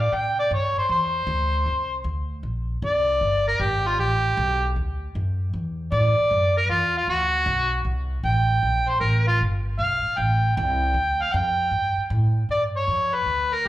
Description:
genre	electric blues shuffle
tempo	155 BPM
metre	4/4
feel	swing 67% on 8ths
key	G mixolydian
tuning	A4 = 440 Hz
part	mellow harmonica	melody	0.0-13.7 s	F4 to G5	-22 LUFS	equal	overdrive, plate reverb, slapback echo
part	upright bass	bass	0.0-13.7 s	G1 to C3	-24 LUFS	equal	none
room	light reverb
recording	live gig heard through the venue's PA, club reverb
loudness	-20 LUFS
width	side -14 dB against mid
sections	0.0-12.5 A section; 12.5-13.7 B section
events	harmonica solo 0.0-12.5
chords	0.1 C9; 3.2 Gadd9; 4.8 Dadd9; 7.9 C5; 9.4 G9; 12.5 G7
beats	| 0.13 0.51 0.90 1.29 | 1.67 2.06 2.44 2.83 | 3.22 3.60 3.99 4.38 | 4.76 5.15 5.53 5.92 | 6.31 6.69 7.08 7.46 | 7.85 8.24 8.62 9.01 | 9.40 9.78 10.17 10.56 | 10.94 11.33 11.72 12.11 | 12.49 12.88 13.27 13.66

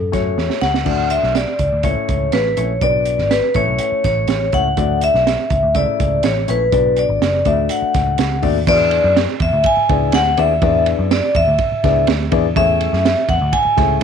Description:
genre	uptempo 1960s-style soul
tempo	123 BPM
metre	4/4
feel	straight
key	E mixolydian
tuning	A4 = 440 Hz
part	vibraphone with medium mallets	melody	0.0-14.0 s	A4 to G#5	-17 LUFS	left 1 dB	slapback echo
part	vintage muted picked electric bass	bass	0.0-14.0 s	F#1 to F#2	-20 LUFS	equal	tube saturation
part	dark upright piano	accompaniment	0.1-14.0 s	C#3 to E5	-21 LUFS	left 15 dB	none
part	crunchy breakbeat drum kit	drums	0.1-14.0 s	crash cymbal, hi-hat, kick drum, ride cymbal, snare drum	-21 LUFS	right 5 dB	none
room	light reverb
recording	1960s-style stereo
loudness	-14 LUFS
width	side -7 dB against mid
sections	0.9-8.7 A section; 8.7-14.0 B section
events	drum fill 0.4-0.9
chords	0.0 F#m; 0.9 D; 1.8 A/C#; 2.8 Bm; 3.5 A; 4.8 D; 5.7 A/C#; 6.7 Bm; 7.5 D; 8.7 E7; 12.6 Amaj7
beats	0.37 | 0.86 1.35 1.84 2.33 | 2.81 3.30 3.79 4.28 | 4.77 5.26 5.75 6.24 | 6.72 7.21 7.70 8.19 | 8.67 9.16 9.65 10.13 | 10.62 11.10 11.59 12.07 | 12.56 13.04 13.53 14.01

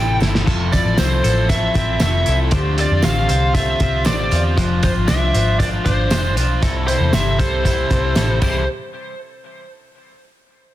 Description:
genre	jangly indie pop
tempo	117 BPM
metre	4/4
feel	straight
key	C major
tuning	A4 = 442 Hz
part	biting lead guitar	melody	0.0-8.7 s	C5 to G5	-22 LUFS	equal	overdrive
part	vibraphone with soft mallets	second line	0.0-8.7 s	E4 to A4	-30 LUFS	equal	none
part	biting overdriven guitar	accompaniment	0.0-8.6 s	C3 to C5	-26 LUFS	right 4 dB	none
part	twelve-string electric guitar	arpeggios	0.0-8.6 s	C3 to C5	-24 LUFS	left 4 dB	none
part	vintage muted picked electric bass	bass	0.0-8.7 s	F1 to F2	-19 LUFS	equal	none
part	cloth-damped thuddy drum kit	drums	0.2-8.5 s	crash cymbal, hi-hat, kick drum, snare drum, splash cymbal	-20 LUFS	equal	none
part	tambourine	percussion	0.2-8.7 s	none	-37 LUFS	right 10 dB	none
room	light reverb, studio reverb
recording	dense, heavily limited modern master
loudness	-15 LUFS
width	side -14 dB against mid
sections	0.0-8.7 A section; 8.7-10.7 B section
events	drum fill 0.0-0.5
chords	0.5 Fmaj7; 2.5 Dm7; 4.6 Fm6; 6.6 C6; 8.7 N.C.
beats	| 0.47 0.98 1.50 2.01 | 2.53 3.04 3.55 4.07 | 4.58 5.09 5.61 6.12 | 6.63 7.14 7.65 8.16

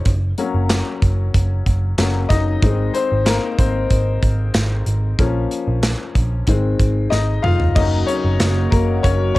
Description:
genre	piano-driven pop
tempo	94 BPM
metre	4/4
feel	straight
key	unclear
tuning	A4 = 440 Hz
part	bright upright piano	accompaniment	0.0-9.4 s	Eb3 to F5	-21 LUFS	left 4 dB	cassette tape
part	vintage muted picked electric bass	bass	0.1-9.4 s	F1 to Bb1	-19 LUFS	equal	none
part	modern studio drum kit	drums	0.1-9.4 s	crash cymbal, handclaps, hi-hat, kick drum, snare drum, toms	-19 LUFS	right 1 dB	none
part	warm analog pad	sustained chords	7.7-9.4 s	Db3 to Gb4	-24 LUFS	right 2 dB	chorus, cassette tape
room	studio reverb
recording	home recording on cassette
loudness	-15 LUFS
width	side -18 dB against mid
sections	0.0-7.8 A section; 7.8-9.4 B section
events	upright piano solo 0.0-7.8, 7.8-9.4; drum fill 7.1-7.8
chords	0.1 Gb; 2.6 Ab; 5.2 Bbm; 6.5 Ab; 7.8 Gb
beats	| 0.06 0.70 1.34 1.98 | 2.62 3.27 3.91 4.55 | 5.19 5.83 6.48 7.12 | 7.76 8.40 9.04

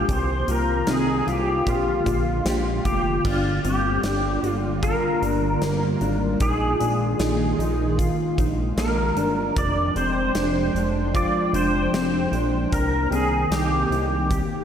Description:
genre	dream pop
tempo	76 BPM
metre	4/4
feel	straight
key	unclear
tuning	A4 = 441 Hz
part	pedal steel guitar	melody	0.0-14.6 s	F4 to D5	-25 LUFS	equal	ensemble chorus, ping-pong delay
part	hollow soft pad	sustained chords	0.0-14.6 s	D3 to G5	-27 LUFS	right 1 dB	ensemble chorus, phaser
part	mellow electric guitar	arpeggios	0.0-14.6 s	Bb3 to G4	-28 LUFS	left 2 dB	analog chorus, ping-pong delay
part	chorused synth bass	bass	0.0-14.4 s	F1 to C2	-26 LUFS	equal	none
part	huge arena drum kit	drums	0.1-14.5 s	crash cymbal, hi-hat, kick drum, snare drum, tambourine	-29 LUFS	equal	none
room	wet lush hall reverb, RT60 2.5 s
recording	dreamy mix soaked in reverb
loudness	-20 LUFS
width	side -8 dB against mid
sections	0.0-3.2 A section; 3.2-14.6 A section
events	none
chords	0.1 Cm7; 1.7 Bb7; 3.2 Gm7; 6.4 Bb7sus4; 9.6 Fm69; 12.7 Cm7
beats	| 0.09 0.88 1.67 2.46 | 3.25 4.04 4.83 5.62 | 6.41 7.20 7.99 8.78 | 9.57 10.36 11.14 11.94 | 12.72 13.51 14.30

